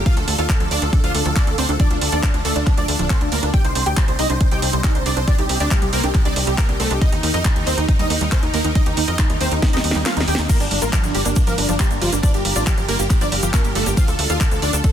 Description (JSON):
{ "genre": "uplifting trance", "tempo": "138 BPM", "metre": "4/4", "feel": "straight", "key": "G minor", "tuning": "A4 = 440 Hz", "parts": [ { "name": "supersaw chords", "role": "melody", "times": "0.0-14.9 s", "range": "F3 to G5", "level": "-24 LUFS", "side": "right 1 dB", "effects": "analog chorus, sidechain pumping, tape echo" }, { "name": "analog pluck", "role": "second line", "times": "0.0-14.9 s", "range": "D4 to G5", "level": "-31 LUFS", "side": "left 2 dB", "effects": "chorus, sidechain pumping, tape echo" }, { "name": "analog string pad", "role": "sustained chords", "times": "0.0-14.9 s", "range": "C3 to Bb4", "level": "-29 LUFS", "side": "left 1 dB", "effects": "ensemble chorus, sidechain pumping" }, { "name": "tight sequencer bass", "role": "bass", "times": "0.0-14.8 s", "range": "D1 to F2", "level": "-23 LUFS", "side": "equal", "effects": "sidechain pumping" }, { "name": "wide unison pluck", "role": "arpeggios", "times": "0.1-14.9 s", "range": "F3 to Eb5", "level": "-29 LUFS", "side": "right 4 dB", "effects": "sidechain pumping, tape echo" }, { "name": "electronic kick drum", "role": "drums", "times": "0.1-14.9 s", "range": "none", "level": "-18 LUFS", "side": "equal", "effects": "none" }, { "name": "house drum kit", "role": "drums", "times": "0.1-14.9 s", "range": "crash cymbal, handclaps, hi-hat, ride cymbal, snare drum", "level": "-24 LUFS", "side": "right 2 dB", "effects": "none" }, { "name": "swell", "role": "sound effects", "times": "9.8-10.5 s", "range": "none", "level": "-34 LUFS", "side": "equal", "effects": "none" }, { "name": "egg shaker", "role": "percussion", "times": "10.5-14.9 s", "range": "none", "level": "-30 LUFS", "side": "left 4 dB", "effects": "none" } ], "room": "digital ambience", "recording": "dense, heavily limited modern master", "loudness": "-16 LUFS", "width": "side -10 dB against mid", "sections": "0.0-14.9 A section", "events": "drum fill 9.6-10.5; kick drops out 10.1-10.5", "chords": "0.1 Dm; 3.5 Cmadd9; 7.0 Eb; 10.5 Gm7; 14.0 Dm" }